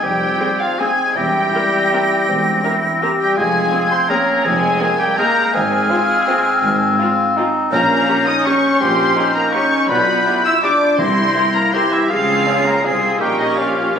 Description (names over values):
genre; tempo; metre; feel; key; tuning
classical; 164 BPM; 3/4; uneven beats, rubato; F minor; A4 = 439 Hz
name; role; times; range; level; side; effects
muted studio violin section; melody; 0.0-14.0 s; Eb5 to E6; -24 LUFS; left 2 dB; none
bright silver concert flute; second line; 0.0-13.7 s; Db6 to C7; -21 LUFS; left 1 dB; none
muted studio violin section; second line; 0.0-14.0 s; Eb5 to E6; -23 LUFS; left 1 dB; none
warm clarinet; second line; 0.0-14.0 s; C4 to Bb4; -22 LUFS; left 1 dB; none
warm oboe; second line; 0.0-14.0 s; Eb4 to E5; -22 LUFS; right 1 dB; none
mellow bassoon; accompaniment; 0.0-14.0 s; Ab3 to G4; -22 LUFS; equal; none
warm French horn section; sustained chords; 0.0-14.0 s; Eb3 to E4; -24 LUFS; left 2 dB; none
muted studio cello section; bass; 0.0-14.0 s; E2 to Db3; -28 LUFS; right 2 dB; none
muted symphonic double bass section; bass; 0.0-14.0 s; E1 to Db2; -26 LUFS; right 1 dB; none
muted symphonic viola section; accompaniment; 0.4-14.0 s; C4 to Bb4; -25 LUFS; right 1 dB; none
timpani; percussion; 11.0-11.5 s; C3; -30 LUFS; right 1 dB; none
room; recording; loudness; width
moderate scoring stage reverb, RT60 2.0 s; recorded on a phone in the room, club reverb; -13 LUFS; side -7 dB against mid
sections
0.0-14.0 A section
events
none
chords
0.0 Fm; 1.2 C7/E; 3.4 Fm; 5.5 Fm/Ab; 7.7 Gdim/Bb; 9.9 G7/B; 11.0 C7; 12.1 Dbmaj7; 13.2 Gdim/Bb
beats
| 0.03 0.41 0.80 | 1.17 1.54 1.92 | 2.28 2.64 3.02 | 3.37 3.73 4.10 | 4.45 4.81 5.18 | 5.54 5.90 6.27 | 6.63 6.99 7.37 | 7.72 8.09 8.46 | 8.81 9.16 9.54 | 9.90 10.26 10.64 | 10.99 11.36 11.74 | 12.11 12.47 12.85 | 13.21 13.59 13.98